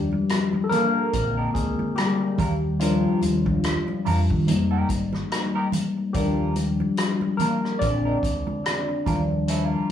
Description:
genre	lush 1970s-style soul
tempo	72 BPM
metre	4/4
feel	swing 58% on 16ths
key	Eb major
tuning	A4 = 436 Hz
part	overdriven tine electric piano	accompaniment	0.0-9.9 s	D3 to D5	-23 LUFS	left 3 dB	phaser
part	hollow-body short-scale fingered electric bass	bass	0.0-9.7 s	F1 to Eb3	-26 LUFS	right 1 dB	none
part	clean electric guitar	riff	0.1-9.9 s	G3 to Bb4	-31 LUFS	right 4 dB	wah
part	congas	percussion	0.1-9.9 s	none	-30 LUFS	right 4 dB	none
part	vintage drum kit	drums	0.3-9.7 s	hi-hat, kick drum, rim click	-29 LUFS	equal	none
room	wet studio ambience, RT60 0.5 s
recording	band playing live in one room, small room reverb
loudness	-21 LUFS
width	side -9 dB against mid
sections	0.0-9.9 A section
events	tine electric piano solo 0.0-9.9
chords	0.0 Ebmaj9 (rootless); 1.1 Bb9; 2.4 Ebmaj9; 4.5 Fm11; 6.1 Ebmaj9; 7.8 Bb9; 9.1 Ebmaj9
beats	0.30 1.13 1.97 | 2.80 3.64 4.47 5.31 | 6.14 6.98 7.81 8.65 | 9.48

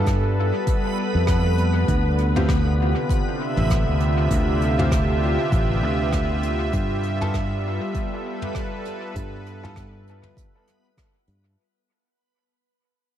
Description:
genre	ambient dub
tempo	99 BPM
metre	4/4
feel	swing 58% on 16ths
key	unclear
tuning	A4 = 439 Hz
part	warm analog pad	sustained chords	0.0-11.6 s	C3 to E5	-25 LUFS	right 1 dB	chorus
part	clear upright piano	stabs	0.0-9.7 s	B3 to A4	-34 LUFS	equal	dub echo
part	fingered electric bass	bass	0.0-11.6 s	A1 to G2	-22 LUFS	equal	none
part	backwards swelling texture	texture	0.0-11.6 s	B3 to B4	-31 LUFS	left 1 dB	built-in reverb
part	electronic kick drum	drums	0.1-11.1 s	none	-25 LUFS	equal	none
part	soft brush drum kit	drums	0.1-11.4 s	hi-hat, rim click, toms	-33 LUFS	equal	dub echo
room	light reverb, small room ambience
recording	none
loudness	-19 LUFS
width	side -10 dB against mid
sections	0.0-11.6 A section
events	fade-out 5.1-11.6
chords	0.0 G13; 1.9 Dm11; 6.7 G13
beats	0.07 0.67 1.28 | 1.88 2.49 3.10 3.70 | 4.31 4.92 5.52 6.13 | 6.73 7.34 7.95 8.55 | 9.16 9.76 10.37 10.97

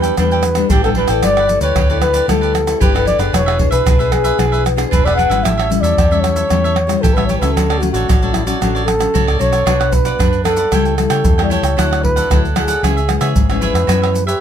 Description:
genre	samba and choro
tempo	114 BPM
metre	4/4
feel	straight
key	D major, B minor from 9.7 s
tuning	A4 = 441 Hz
part	breathy flugelhorn	melody	0.0-14.4 s	E4 to F#5	-18 LUFS	right 1 dB	none
part	cavaquinho	accompaniment	0.0-14.4 s	D4 to G5	-22 LUFS	right 4 dB	none
part	nylon-string guitar	accompaniment	0.0-14.4 s	F#2 to A4	-20 LUFS	left 9 dB	none
part	vintage muted fingered electric bass	bass	0.0-14.3 s	E1 to C#3	-18 LUFS	equal	none
part	tube shaker, pandeiro, surdo and tamborim	percussion	0.0-14.4 s	none	-17 LUFS	right 1 dB	none
room	light reverb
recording	close, detailed microphones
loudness	-12 LUFS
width	side -9 dB against mid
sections	0.0-9.7 A section; 9.7-14.4 B section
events	none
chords	0.0 A9sus4; 1.2 G69; 3.3 E7; 5.4 A7; 7.6 Dmaj7; 9.7 Bm; 10.7 A7/C#; 11.8 Dadd9; 12.8 C#m; 13.9 F#7sus4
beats	0.17 0.70 | 1.23 1.76 2.28 2.81 | 3.34 3.87 4.39 4.92 | 5.45 5.97 6.50 7.03 | 7.55 8.08 8.61 9.14 | 9.66 10.19 10.72 11.25 | 11.77 12.30 12.83 13.36 | 13.88

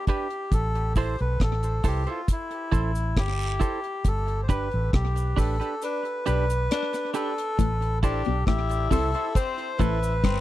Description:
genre	roots reggae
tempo	68 BPM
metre	4/4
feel	straight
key	A minor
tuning	A4 = 440 Hz
part	melodica	melody	0.0-10.4 s	E4 to C5	-30 LUFS	left 1 dB	tape echo
part	semi-hollow electric guitar	accompaniment	0.1-10.0 s	D4 to C5	-34 LUFS	right 7 dB	tape echo
part	deep reggae drum kit	drums	0.1-10.4 s	hi-hat, kick drum, rim click	-24 LUFS	equal	none
part	vintage muted fingered electric bass	bass	0.5-10.4 s	G1 to C2	-26 LUFS	equal	none
part	cabasa and guiro	percussion	0.5-10.4 s	none	-42 LUFS	right 5 dB	none
part	growling tenor saxophone	second line	5.8-10.4 s	C4 to E4	-32 LUFS	left 7 dB	tape echo
part	electric guitar at the edge of break-up	riff	7.6-10.4 s	G2 to C3	-30 LUFS	left 10 dB	none
room	small room ambience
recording	dry, close 1970s-style studio recording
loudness	-23 LUFS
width	side -14 dB against mid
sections	0.0-7.6 A section; 7.6-10.4 B section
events	band accent 4.0-7.6; kick muted 5.8-7.6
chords	0.0 G; 0.5 Am; 4.0 G; 7.6 Am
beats	| 0.51 1.40 2.28 3.17 | 4.05 4.93 5.82 6.70 | 7.58 8.47 9.35 10.23

